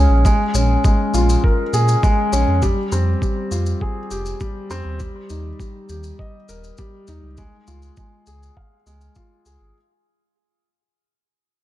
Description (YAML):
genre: piano and strings electronica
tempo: 101 BPM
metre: 4/4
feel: straight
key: unclear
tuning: A4 = 440 Hz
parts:
  - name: felt-muted upright piano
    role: riff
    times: 0.0-9.8 s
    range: G3 to F5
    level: -22 LUFS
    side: left 1 dB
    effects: ping-pong delay
  - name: dark detuned saw bass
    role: bass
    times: 0.0-9.7 s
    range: Eb1 to Bb2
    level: -18 LUFS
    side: equal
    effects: sidechain pumping
  - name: electronic kick drum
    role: drums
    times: 0.2-9.3 s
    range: none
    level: -19 LUFS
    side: equal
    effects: none
  - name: shaker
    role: drums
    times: 0.3-9.6 s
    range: none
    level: -32 LUFS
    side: left 3 dB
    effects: none
room: light reverb, small room ambience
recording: dark, warm production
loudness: -16 LUFS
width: side -14 dB against mid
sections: 0.0-9.8 A section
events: fade-out 0.0-9.8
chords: 0.0 Bbm7; 2.6 Fmadd9; 5.0 Eb; 7.4 Db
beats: | 0.25 0.84 1.44 2.03 | 2.62 3.22 3.81 4.41 | 5.00 5.59 6.19 6.78 | 7.38 7.97 8.56 9.16